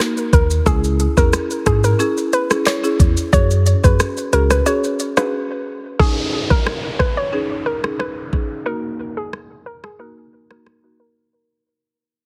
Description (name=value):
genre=dancehall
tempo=90 BPM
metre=4/4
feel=straight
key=unclear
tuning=A4 = 441 Hz
part: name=island pop drum kit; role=drums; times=0.0-10.8 s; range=handclaps, hi-hat, kick drum, rim click, shaker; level=-19 LUFS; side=equal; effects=none
part: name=maracas and timbales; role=percussion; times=0.2-5.3 s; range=none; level=-31 LUFS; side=equal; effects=none
part: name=hollow square pluck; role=melody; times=0.3-11.2 s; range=G#4 to C#5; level=-24 LUFS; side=equal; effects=chorus, low-pass filter, digital delay
part: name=mellow tine electric piano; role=bass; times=0.3-4.6 s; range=C#2 to G#2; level=-19 LUFS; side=equal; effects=none
part: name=marimba with medium mallets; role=accompaniment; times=0.7-11.0 s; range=A#3 to G#4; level=-25 LUFS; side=equal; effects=sidechain pumping, low-pass filter
part: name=downlifter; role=sound effects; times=6.0-11.3 s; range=none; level=-31 LUFS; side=equal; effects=none
room=light reverb, digital ambience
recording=heavily compressed radio sound, multiband compression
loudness=-18 LUFS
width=mono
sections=0.0-6.0 A section; 6.0-11.3 B section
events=break 5.3-6.0; fade-out 6.0-11.3; filter sweep 6.0-11.3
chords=0.0 D#5; 0.7 C#m; 3.3 F#sus2; 6.0 G#sus4; 8.7 D#m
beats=0.00 | 0.66 1.33 2.00 2.66 | 3.33 4.00 4.66 5.33 | 6.00 6.66 7.33 8.00 | 8.66 9.33 10.00 10.66